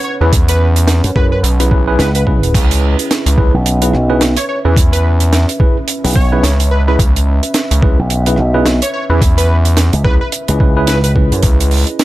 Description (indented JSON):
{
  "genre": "glitch hop",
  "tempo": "108 BPM",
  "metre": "4/4",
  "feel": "swing 59% on 16ths",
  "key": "C# minor",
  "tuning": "A4 = 440 Hz",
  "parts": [
    { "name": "plucky unison lead", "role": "melody", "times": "0.0-11.1 s", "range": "B4 to C#5", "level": "-23 LUFS", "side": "equal", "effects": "dub echo" },
    { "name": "dark analog pad", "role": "sustained chords", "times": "0.0-12.0 s", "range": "C#4 to F#5", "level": "-24 LUFS", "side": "right 1 dB", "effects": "chorus, sidechain pumping" },
    { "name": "deep reggae drum kit", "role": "drums", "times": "0.0-12.0 s", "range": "crash cymbal, hi-hat, rim click, snare drum", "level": "-17 LUFS", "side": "right 3 dB", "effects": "none" },
    { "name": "tine electric piano", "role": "stabs", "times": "0.2-12.0 s", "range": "C#4 to B4", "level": "-20 LUFS", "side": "right 1 dB", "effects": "overdrive, fast stereo tremolo, vintage 12-bit sampler grit, sidechain pumping, dub echo" },
    { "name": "gritty driven synth bass", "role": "bass", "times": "0.2-11.8 s", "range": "B1 to E2", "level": "-12 LUFS", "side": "equal", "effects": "none" },
    { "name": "electronic kick drum", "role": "drums", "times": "0.3-11.6 s", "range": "none", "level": "-12 LUFS", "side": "equal", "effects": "overdrive" },
    { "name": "slap bass with an envelope filter", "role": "bass", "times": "1.0-11.4 s", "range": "B1 to F#2", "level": "-13 LUFS", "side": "equal", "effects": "none" }
  ],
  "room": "small room ambience",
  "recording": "none",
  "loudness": "-10 LUFS",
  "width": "side -16 dB against mid",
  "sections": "0.0-12.0 A section",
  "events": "none",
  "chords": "0.0 C#m7"
}